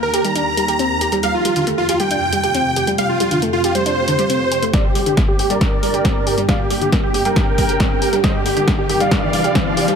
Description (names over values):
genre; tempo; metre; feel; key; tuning
uplifting trance; 137 BPM; 4/4; straight; G minor; A4 = 441 Hz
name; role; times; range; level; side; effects
dense compressed supersaw; melody; 0.0-9.9 s; F4 to Bb5; -19 LUFS; right 1 dB; sidechain pumping, low-pass filter, dub echo
shimmering ambient pad; sustained chords; 0.0-10.0 s; C2 to G4; -25 LUFS; right 1 dB; chorus, built-in reverb, sidechain pumping
analog pluck; arpeggios; 0.1-9.9 s; D3 to G4; -22 LUFS; equal; chorus, sidechain pumping, dub echo
punchy analog drum machine; drums; 0.1-10.0 s; hi-hat, snare drum; -23 LUFS; left 1 dB; none
bright grand piano; second line; 4.7-9.9 s; G4 to G5; -27 LUFS; left 2 dB; none
electronic kick drum; drums; 4.7-9.6 s; none; -18 LUFS; equal; none
riser; sound effects; 6.8-10.0 s; none; -26 LUFS; left 1 dB; none
room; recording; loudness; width
light reverb; none; -14 LUFS; side -6 dB against mid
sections
0.0-4.7 A section; 4.7-10.0 B section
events
build-up 4.7-10.0; drum fill 4.7-10.0; filter sweep on supersaw synth 4.7-10.0; riser 6.8-10.0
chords
0.0 Eb; 1.2 F; 4.7 Gm; 8.2 Cm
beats
0.35 0.79 | 1.23 1.67 2.11 2.54 | 2.98 3.42 3.86 4.30 | 4.74 5.17 5.61 6.05 | 6.49 6.92 7.36 7.80 | 8.24 8.68 9.12 9.55